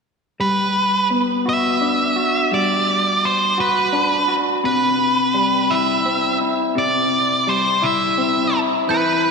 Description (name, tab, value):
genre	rock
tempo	56 BPM (dotted quarters)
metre	6/8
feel	straight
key	unclear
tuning	A4 = 439 Hz
part	octave-fuzz lead guitar	melody	0.4-9.3 s	B4 to E5	-18 LUFS	right 1 dB	distortion
part	electric guitar through a small old amp	arpeggios	0.4-9.3 s	C3 to F#4	-20 LUFS	left 2 dB	spring reverb
part	glockenspiel with hard plastic mallets	arpeggios	8.9-9.3 s	G6	-23 LUFS	right 8 dB	none
room	wet church reverb, RT60 2.7 s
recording	recorded in a church or concert hall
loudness	-16 LUFS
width	side -4 dB against mid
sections	0.4-9.3 A section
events	none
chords	0.4 Gmaj7; 4.6 Cmaj7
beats	| 0.40 1.46 | 2.52 3.58 | 4.64 5.71 | 6.77 7.83 | 8.89